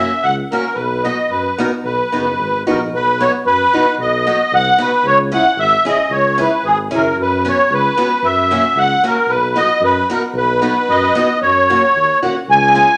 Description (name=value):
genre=alpine folk, alpine dance band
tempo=113 BPM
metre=2/4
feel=straight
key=B major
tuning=A4 = 438 Hz
part: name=musette accordion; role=melody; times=0.0-13.0 s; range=G#4 to G#5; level=-16 LUFS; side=equal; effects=none
part: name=picked steel-string acoustic guitar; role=accompaniment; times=0.0-12.9 s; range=G#3 to G#4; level=-23 LUFS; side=equal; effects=none
part: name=mellow tuba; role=bass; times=0.0-12.8 s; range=F#1 to F#2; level=-25 LUFS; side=equal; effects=none
room=wet large studio reverb, RT60 0.8 s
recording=none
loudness=-15 LUFS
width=mono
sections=0.0-2.9 A section; 2.9-11.4 A section; 11.4-13.0 B section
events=none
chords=0.0 F#7; 0.8 B; 5.0 C#m; 7.2 F#sus4; 8.2 F#7; 9.3 B; 11.4 F#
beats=0.24 | 0.77 1.30 | 1.84 2.38 | 2.92 3.46 | 3.99 4.51 | 5.04 5.57 | 6.11 6.64 | 7.18 7.71 | 8.24 8.77 | 9.29 9.82 | 10.35 10.89 | 11.43 11.96 | 12.49